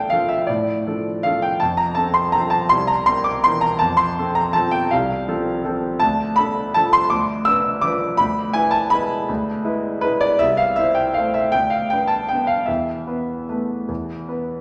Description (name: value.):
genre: classical, piano waltz.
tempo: 144-173 BPM.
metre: 3/4.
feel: rubato.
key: unclear.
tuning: A4 = 437 Hz.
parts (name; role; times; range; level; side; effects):
clear concert grand piano; solo; 0.0-14.6 s; C2 to E6; -20 LUFS; equal; none.
room: wet recital hall reverb, RT60 1.6 s.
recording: none.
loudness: -20 LUFS.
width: mono.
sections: 0.0-14.6 A section.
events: none.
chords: 0.0 Dm; 1.6 F; 2.7 C7; 3.8 F; 6.0 Dm; 7.1 Bdim/D; 8.2 E7/D; 10.4 Am/C; 11.5 Dm6; 12.7 Esus4; 13.9 E5.